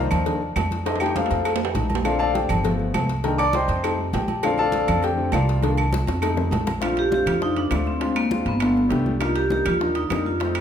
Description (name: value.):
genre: Afro-Cuban jazz.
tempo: 201 BPM.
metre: 4/4.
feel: straight.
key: Bb major.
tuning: A4 = 440 Hz.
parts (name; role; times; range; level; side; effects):
warm concert grand piano; accompaniment; 0.0-10.6 s; D3 to D6; -25 LUFS; left 3 dB; none.
upright bass; bass; 0.0-10.6 s; G1 to F2; -26 LUFS; right 1 dB; none.
agogo bells and timbales; percussion; 0.1-10.6 s; none; -29 LUFS; right 4 dB; none.
claves; percussion; 0.1-10.6 s; none; -36 LUFS; right 2 dB; none.
congas; percussion; 0.1-10.6 s; none; -31 LUFS; equal; none.
cowbell and bongos; percussion; 0.1-10.6 s; none; -32 LUFS; left 4 dB; none.
vibraphone with medium hard mallets; melody; 6.8-10.5 s; Bb3 to G4; -22 LUFS; right 1 dB; none.
room: moderate recital hall reverb, RT60 1.7 s.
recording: recorded in a church or concert hall.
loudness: -20 LUFS.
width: side -8 dB against mid.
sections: 0.0-6.8 A section; 6.8-10.6 B section.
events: grand piano solo 0.0-6.8; drum fill 0.9-2.0, 5.9-6.8.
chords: 0.0 Cm9; 0.9 F7; 2.0 Bbmaj7; 2.6 G7; 3.2 Cm7; 3.8 F7; 4.4 Bbmaj7; 5.6 Cm7; 6.2 F9; 6.8 Bbmaj7; 8.0 Dm7b5; 8.6 G7; 9.2 Cm9.